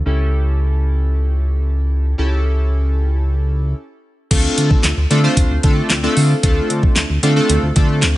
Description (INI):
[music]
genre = dance-pop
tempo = 113 BPM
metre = 4/4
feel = straight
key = D minor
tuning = A4 = 437 Hz
[part]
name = chorused retro synth keys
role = accompaniment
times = 0.0-8.1 s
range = A3 to C5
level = -20 LUFS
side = equal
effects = sidechain pumping, low-pass filter
[part]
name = chorused synth bass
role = bass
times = 0.0-8.2 s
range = C#2 to D3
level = -16 LUFS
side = equal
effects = sidechain pumping
[part]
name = smooth R&B drum kit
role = drums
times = 4.3-8.2 s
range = crash cymbal, handclaps, hi-hat, kick drum, snare drum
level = -16 LUFS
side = equal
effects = none
[sound]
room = little or no reverb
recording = nothing above 11.0 kHz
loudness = -14 LUFS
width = side -16 dB against mid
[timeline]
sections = 0.0-4.3 A section; 4.3-8.2 B section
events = stop 3.8-4.3; drop 4.3-8.2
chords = 0.1 A7/C#; 4.3 Dm7